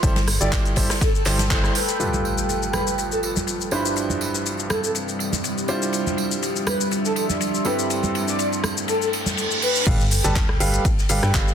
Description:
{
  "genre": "piano house",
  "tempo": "122 BPM",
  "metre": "4/4",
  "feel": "swing 54% on 16ths",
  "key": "G mixolydian",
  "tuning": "A4 = 441 Hz",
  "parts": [
    { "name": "clear baby grand piano", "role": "riff", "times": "0.0-11.5 s", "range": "G2 to A5", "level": "-27 LUFS", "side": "right 2 dB", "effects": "sidechain pumping, low-pass filter, dub echo" },
    { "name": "organ-like FM bass", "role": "bass", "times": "0.0-1.7, 9.9-11.5 s", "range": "G1 to G2", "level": "-23 LUFS", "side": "equal", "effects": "sidechain pumping" },
    { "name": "electronic kick drum", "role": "drums", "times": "0.0-1.6, 9.9-11.4 s", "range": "none", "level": "-21 LUFS", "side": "equal", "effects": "none" },
    { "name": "garage drum kit", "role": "drums", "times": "0.0-11.5 s", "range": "crash cymbal, handclaps, hi-hat, rim click, shaker", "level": "-26 LUFS", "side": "left 2 dB", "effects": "soft clipping on snare" },
    { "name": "open jazz drum kit", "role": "drums", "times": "0.0-11.5 s", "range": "ride cymbal, snare drum", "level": "-33 LUFS", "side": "left 5 dB", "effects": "high-pass filter on cymbals, low-pass filter on cymbals, high-pass filter on snare, low-pass filter on snare, high-pass filter on room, low-pass filter on room" },
    { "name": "tambourine and congas", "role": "percussion", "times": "0.0-9.8 s", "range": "none", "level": "-30 LUFS", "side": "right 2 dB", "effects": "none" },
    { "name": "deep dark ambient pad", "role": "texture", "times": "0.0-11.5 s", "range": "F3 to C6", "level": "-28 LUFS", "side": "right 1 dB", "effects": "chorus, built-in reverb, sidechain pumping" },
    { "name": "breathy flute-like synth lead", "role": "melody", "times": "0.4-9.9 s", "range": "A4 to D5", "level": "-28 LUFS", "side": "left 1 dB", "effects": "wide subtle chorus, dub echo" },
    { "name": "impact, reverse cymbal and sub drop", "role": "sound effects", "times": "2.0-4.0, 9.1-11.5 s", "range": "none", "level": "-27 LUFS", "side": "right 1 dB", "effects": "none" }
  ],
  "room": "light reverb, studio ambience",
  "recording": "dense, heavily limited modern master",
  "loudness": "-19 LUFS",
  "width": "side -8 dB against mid",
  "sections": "0.0-2.0 A section; 2.0-9.9 B section; 9.9-11.5 C section",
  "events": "band accent 1.5; impact 2.0-4.0, 9.9-11.5; reverse cymbal 9.1-9.9; drop 9.9-11.5",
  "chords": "0.0 Am7/G; 2.0 G9; 3.7 Cmaj9/G; 5.7 Dm9; 7.7 Am7/G; 9.9 G9"
}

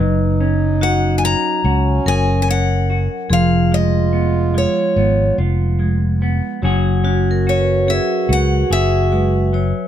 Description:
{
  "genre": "acoustic folk-pop ballad",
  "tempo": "72 BPM",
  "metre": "4/4",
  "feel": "straight",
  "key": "unclear",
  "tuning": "A4 = 438 Hz",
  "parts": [
    { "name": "warm French horn", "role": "second line", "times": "0.0-9.9 s", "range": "C#4 to F#4", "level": "-23 LUFS", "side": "right 4 dB", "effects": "none" },
    { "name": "semi-hollow electric guitar", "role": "accompaniment", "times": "0.0-9.9 s", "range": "E#3 to G#4", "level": "-22 LUFS", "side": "left 1 dB", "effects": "none" },
    { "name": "vibraphone with hard mallets", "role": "arpeggios", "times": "0.0-9.9 s", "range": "F#4 to D#5", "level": "-25 LUFS", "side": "right 1 dB", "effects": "none" },
    { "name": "fretless electric bass", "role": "bass", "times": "0.0-9.7 s", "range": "E#1 to C#2", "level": "-17 LUFS", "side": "equal", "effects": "none" },
    { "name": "picked steel-string acoustic guitar", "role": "melody", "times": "0.8-9.9 s", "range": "C#5 to A#5", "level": "-20 LUFS", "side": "left 2 dB", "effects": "none" }
  ],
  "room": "little or no reverb",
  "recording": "close, detailed microphones",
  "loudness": "-14 LUFS",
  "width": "side -10 dB against mid",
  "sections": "0.0-9.9 A section",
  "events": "none",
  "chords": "0.0 F#sus2; 3.3 C#7/E#; 6.6 F#sus2"
}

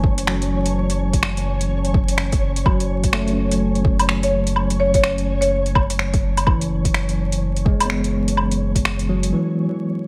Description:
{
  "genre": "future garage",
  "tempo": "126 BPM",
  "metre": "4/4",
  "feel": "swing 60% on 16ths",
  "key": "F# minor",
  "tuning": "A4 = 441 Hz",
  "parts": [
    { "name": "tine electric piano", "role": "accompaniment", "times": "0.0-10.1 s", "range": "E3 to C#4", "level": "-26 LUFS", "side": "equal", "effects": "overdrive, medium tremolo, sidechain pumping, digital delay" },
    { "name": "warbly tape-like pad", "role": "sustained chords", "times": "0.0-9.3 s", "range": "F#3 to A5", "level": "-35 LUFS", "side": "equal", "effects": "chorus, built-in reverb, sidechain pumping" },
    { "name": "soft dub sub bass", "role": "bass", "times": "0.0-9.3 s", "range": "F#1", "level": "-25 LUFS", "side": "equal", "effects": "sidechain pumping" },
    { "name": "electronic kick drum", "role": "drums", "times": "0.0-8.8 s", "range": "none", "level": "-22 LUFS", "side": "equal", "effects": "overdrive, small room reverb" },
    { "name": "flickering grainy texture", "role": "texture", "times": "0.0-9.3 s", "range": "C#5", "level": "-34 LUFS", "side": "equal", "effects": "built-in reverb" },
    { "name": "deep house drum kit", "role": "drums", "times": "0.2-9.3 s", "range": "finger snaps, hi-hat, woodblock", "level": "-26 LUFS", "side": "equal", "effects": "overdrive, small room reverb" },
    { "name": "buzzing marimba with medium hard mallets", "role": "melody", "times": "4.2-6.1 s", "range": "C#5", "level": "-25 LUFS", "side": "equal", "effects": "vintage 12-bit sampler grit, dub echo" }
  ],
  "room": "moderate lush hall reverb, RT60 1.9 s",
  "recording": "vinyl crackle",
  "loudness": "-19 LUFS",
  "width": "mono",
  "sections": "0.0-10.1 A section",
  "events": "none",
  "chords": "0.0 F#m7"
}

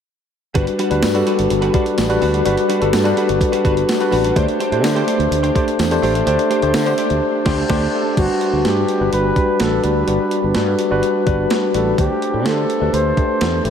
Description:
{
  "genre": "1980s-style pop",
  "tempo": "126 BPM",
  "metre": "4/4",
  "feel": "straight",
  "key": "G major",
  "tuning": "A4 = 443 Hz",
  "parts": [
    { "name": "tine electric piano", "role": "accompaniment", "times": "0.5-13.7 s", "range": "G3 to C5", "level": "-17 LUFS", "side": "left 2 dB", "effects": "medium stereo tremolo" },
    { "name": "direct-recorded clean electric guitar", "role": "riff", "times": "0.5-7.9 s", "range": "G3 to C5", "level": "-26 LUFS", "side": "right 2 dB", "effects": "analog chorus, tape echo" },
    { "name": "sustaining fretless electric bass", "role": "bass", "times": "0.6-13.7 s", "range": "G1 to D3", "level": "-21 LUFS", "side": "equal", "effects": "analog chorus" },
    { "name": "clean 12-bit digital drum machine", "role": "drums", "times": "0.6-13.7 s", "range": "crash cymbal, hi-hat, kick drum, snare drum", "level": "-22 LUFS", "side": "right 2 dB", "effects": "overdrive" },
    { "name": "tambourine", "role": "percussion", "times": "1.0-6.9 s", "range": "none", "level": "-41 LUFS", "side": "left 4 dB", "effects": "none" },
    { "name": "breathy flugelhorn", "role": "melody", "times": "7.9-13.7 s", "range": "F#4 to C5", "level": "-22 LUFS", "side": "equal", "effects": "tape echo" }
  ],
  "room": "wet cathedral reverb, RT60 6.0 s",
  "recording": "dreamy mix soaked in reverb",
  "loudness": "-14 LUFS",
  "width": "side -8 dB against mid",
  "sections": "0.6-8.2 A section; 8.2-13.7 B section",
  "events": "band accent 7.2-8.2",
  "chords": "0.6 Gmaj7; 4.4 D7sus4; 8.2 Gmaj7; 12.0 D7sus4"
}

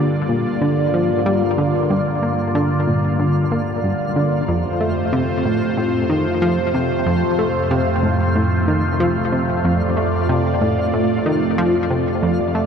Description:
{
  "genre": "ambient, sequencer-driven space music",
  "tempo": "93 BPM",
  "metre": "4/4",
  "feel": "straight",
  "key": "unclear",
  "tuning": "A4 = 441 Hz",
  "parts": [
    { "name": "phased analog pad", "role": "sustained chords", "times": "0.0-12.7 s", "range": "F2 to D5", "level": "-18 LUFS", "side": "equal", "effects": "phaser, chorus" },
    { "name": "plucky analog bass", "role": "riff", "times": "0.0-12.7 s", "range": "F2 to Bb3", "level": "-20 LUFS", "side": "equal", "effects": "ping-pong delay" },
    { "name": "twinkling granular texture", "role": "texture", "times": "0.1-12.7 s", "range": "F5", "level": "-35 LUFS", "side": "right 3 dB", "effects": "built-in reverb" }
  ],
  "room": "wet cathedral reverb, RT60 5.3 s",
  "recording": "in a vast, echoing space, nothing above 10.5 kHz",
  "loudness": "-16 LUFS",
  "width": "side -7 dB against mid",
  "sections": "0.0-12.7 A section",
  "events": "fade-in on synth texture 0.0-12.7",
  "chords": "0.0 Gm; 4.5 F"
}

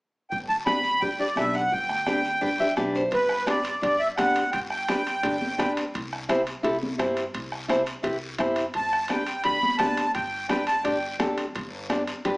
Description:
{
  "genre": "latin, cumbia",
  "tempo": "171 BPM",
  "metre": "4/4",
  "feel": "straight",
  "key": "G major",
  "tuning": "A4 = 440 Hz",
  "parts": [
    { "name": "accordion", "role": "melody", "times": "0.3-5.7, 8.8-11.2 s", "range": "B4 to B5", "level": "-24 LUFS", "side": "right 1 dB", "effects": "light tremolo tuning" },
    { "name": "upright bass", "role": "bass", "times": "0.3-12.4 s", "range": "G1 to G2", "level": "-40 LUFS", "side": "equal", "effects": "none" },
    { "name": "bombo", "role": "percussion", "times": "0.3-12.4 s", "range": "none", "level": "-35 LUFS", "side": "equal", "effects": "none" },
    { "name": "guiro", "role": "percussion", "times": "0.3-12.4 s", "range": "none", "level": "-41 LUFS", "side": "left 2 dB", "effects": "none" },
    { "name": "nylon-string guitar", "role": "accompaniment", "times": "0.7-12.4 s", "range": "D4 to E5", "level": "-27 LUFS", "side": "equal", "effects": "none" },
    { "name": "congas", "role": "percussion", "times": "0.7-12.1 s", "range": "none", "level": "-34 LUFS", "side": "left 1 dB", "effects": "none" },
    { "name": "timbales", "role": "percussion", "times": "3.1-12.4 s", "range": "none", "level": "-36 LUFS", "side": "right 1 dB", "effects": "none" }
  ],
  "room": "moderate large studio reverb, RT60 1.1 s",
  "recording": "small speaker sound",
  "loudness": "-23 LUFS",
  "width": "side -25 dB against mid",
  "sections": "0.3-3.1 A section; 3.1-12.4 B section",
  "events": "nylon-string guitar fill 2.4-3.1",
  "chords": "0.3 G; 5.9 C; 8.7 G"
}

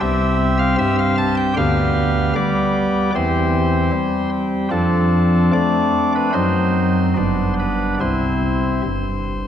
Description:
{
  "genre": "classical, chorale-style piece for pipe organ",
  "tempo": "71-78 BPM",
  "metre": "4/4",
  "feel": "straight",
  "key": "C major",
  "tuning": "A4 = 438 Hz",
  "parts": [
    { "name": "chamber organ, cornet", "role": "solo", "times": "0.0-9.5 s", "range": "G1 to A5", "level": "-16 LUFS", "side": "equal", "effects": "none" }
  ],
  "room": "wet church reverb, RT60 2.8 s",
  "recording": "none",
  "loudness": "-16 LUFS",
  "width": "side -9 dB against mid",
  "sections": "0.0-9.5 A section",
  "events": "none",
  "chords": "0.0 C5; 1.6 G7/D; 3.1 C/E; 4.7 Dm7/F; 6.3 Cdim/Gb; 7.2 G; 8.0 C"
}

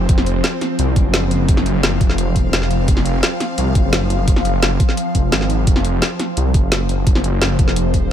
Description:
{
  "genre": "dark technical drum and bass",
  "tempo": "172 BPM",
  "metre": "4/4",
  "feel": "straight",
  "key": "unclear",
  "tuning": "A4 = 440 Hz",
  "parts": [
    { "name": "swarming drone", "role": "sustained chords", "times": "0.0-8.1 s", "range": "F3 to F5", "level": "-22 LUFS", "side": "left 1 dB", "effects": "built-in reverb, phaser, sidechain pumping" },
    { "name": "wide detuned saw bass", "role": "bass", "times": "0.0-8.1 s", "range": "F1 to C2", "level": "-18 LUFS", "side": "equal", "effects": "chorus, sidechain pumping" },
    { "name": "drum and bass drum kit", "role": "drums", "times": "0.1-8.0 s", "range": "hi-hat, snare drum", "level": "-20 LUFS", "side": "equal", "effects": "none" },
    { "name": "electronic kick drum", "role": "drums", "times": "0.1-8.0 s", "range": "none", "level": "-15 LUFS", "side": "equal", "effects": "overdrive" }
  ],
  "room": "little or no reverb",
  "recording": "none",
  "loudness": "-14 LUFS",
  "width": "side -10 dB against mid",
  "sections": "0.0-8.1 A section",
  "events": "none",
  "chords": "0.0 F5"
}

